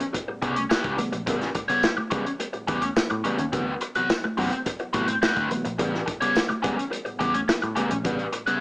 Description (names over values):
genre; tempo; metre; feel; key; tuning
funk; 106 BPM; 4/4; straight; A mixolydian; A4 = 439 Hz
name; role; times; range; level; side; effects
raw garage guitar; accompaniment; 0.0-8.6 s; C4 to C#5; -26 LUFS; left 1 dB; wah, overdrive, plate reverb
crunchy breakbeat drum kit; drums; 0.0-8.6 s; hi-hat, kick drum, snare drum; -27 LUFS; equal; vintage 12-bit sampler grit
tine electric piano; stabs; 0.1-8.6 s; A2 to B3; -32 LUFS; equal; overdrive, fast stereo tremolo, tape echo, plate reverb
congas; percussion; 0.1-8.2 s; none; -35 LUFS; right 1 dB; none
vintage muted picked electric bass; bass; 0.4-8.5 s; A1 to A2; -32 LUFS; equal; none
tambourine; percussion; 0.7-7.6 s; none; -42 LUFS; left 1 dB; none
room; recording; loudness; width
moderate club reverb, RT60 0.8 s; small speaker sound; -22 LUFS; side -28 dB against mid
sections
0.0-8.6 A section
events
none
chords
0.0 A9; 3.5 D13; 5.8 A9